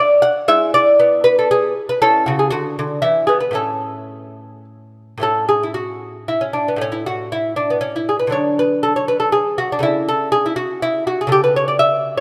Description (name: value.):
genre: classical, baroque-style dance for lute.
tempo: 107-123 BPM.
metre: 3/4.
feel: rubato.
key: A major.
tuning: A4 = 440 Hz.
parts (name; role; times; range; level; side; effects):
lute; solo; 0.0-12.2 s; A2 to F#5; -17 LUFS; equal; none.
room: moderate concert hall reverb, RT60 2.6 s.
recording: close, detailed microphones.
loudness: -17 LUFS.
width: mono.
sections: 0.0-5.2 A section; 5.2-12.2 B section.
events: none.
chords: 0.5 E7/G#; 2.0 A/C#; 2.5 N.C.; 3.0 E5; 3.6 A; 6.8 N.C.; 8.3 D; 9.8 A/C#.